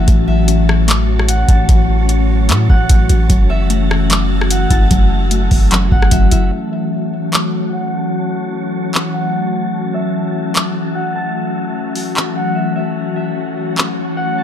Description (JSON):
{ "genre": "hip hop, atmospheric cloud-rap", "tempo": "149 BPM", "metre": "4/4", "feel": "half-time", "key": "A major", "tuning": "A4 = 439 Hz", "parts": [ { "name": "Celtic harp", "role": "melody", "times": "0.0-14.4 s", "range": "E5 to A5", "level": "-24 LUFS", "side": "left 1 dB", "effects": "low-pass filter, ping-pong delay" }, { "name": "glassy FM pad", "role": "sustained chords", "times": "0.0-14.4 s", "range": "E3 to F#4", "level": "-19 LUFS", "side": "left 2 dB", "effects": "ensemble chorus, built-in reverb, sidechain pumping, low-pass filter" }, { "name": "mallet-like synth pluck", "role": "arpeggios", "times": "0.0-6.5 s", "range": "F#3 to F#4", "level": "-25 LUFS", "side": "left 2 dB", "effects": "chorus, ping-pong delay" }, { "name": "long sustained 808-style bass", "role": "bass", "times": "0.0-6.5 s", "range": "F#1 to A2", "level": "-14 LUFS", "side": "equal", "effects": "none" }, { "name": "wind-like tuned noise texture", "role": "texture", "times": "0.0-14.4 s", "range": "F#4 to A5", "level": "-27 LUFS", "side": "equal", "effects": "built-in reverb" }, { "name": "booming analog drum machine", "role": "drums", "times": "0.1-13.9 s", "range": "handclaps, hi-hat, kick drum, rim click", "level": "-14 LUFS", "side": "equal", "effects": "none" } ], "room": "light reverb", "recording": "none", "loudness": "-12 LUFS", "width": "side -10 dB against mid", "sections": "0.0-6.5 A section; 6.5-14.4 B section", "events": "filter sweep 6.5-14.4; silent gap 12.6-13.0", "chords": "0.1 A6; 3.3 F#m7; 6.5 A6" }